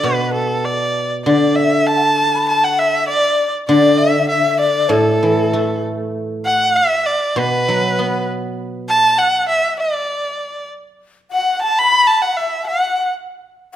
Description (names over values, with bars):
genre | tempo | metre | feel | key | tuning
chinese traditional, Chinese chamber ensemble | 99 BPM | 2/4 | rubato | A zhi mode | A4 = 440 Hz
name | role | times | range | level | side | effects
rich erhu | melody | 0.0-13.1 s | A4 to B5 | -16 LUFS | right 1 dB | none
guzheng | accompaniment | 0.0-9.2 s | A2 to B3 | -18 LUFS | equal | none
breathy xiao | second line | 1.3-5.8, 11.3-13.1 s | A4 to B5 | -19 LUFS | left 5 dB | none
room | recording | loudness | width
moderate recital hall reverb, RT60 1.3 s | none | -14 LUFS | side -11 dB against mid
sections
0.0-6.1 A section; 6.1-13.8 B section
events
none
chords
none